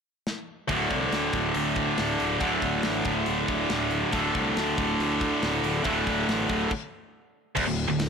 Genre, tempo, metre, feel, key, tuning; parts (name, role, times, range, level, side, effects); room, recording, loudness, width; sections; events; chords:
heavy metal; 140 BPM; 4/4; straight; A4 = 439 Hz
tight metal drum kit; drums; 0.3-8.1 s; crash cymbal, hi-hat, kick drum, snare drum; -34 LUFS; left 1 dB; soft clipping on kick
tight distorted guitar; riff; 0.7-8.1 s; D2 to D3; -24 LUFS; equal; distortion
fuzz picked electric bass; bass; 0.7-8.1 s; D1 to D2; -33 LUFS; left 1 dB; overdrive
small room ambience; blown-out, overdriven recording, overdrive; -24 LUFS; side -6 dB against mid
0.7-7.6 A section
drum fill 0.3-0.7; stop 6.7-7.6
0.0 N.C.; 0.7 D5; 7.6 N.C.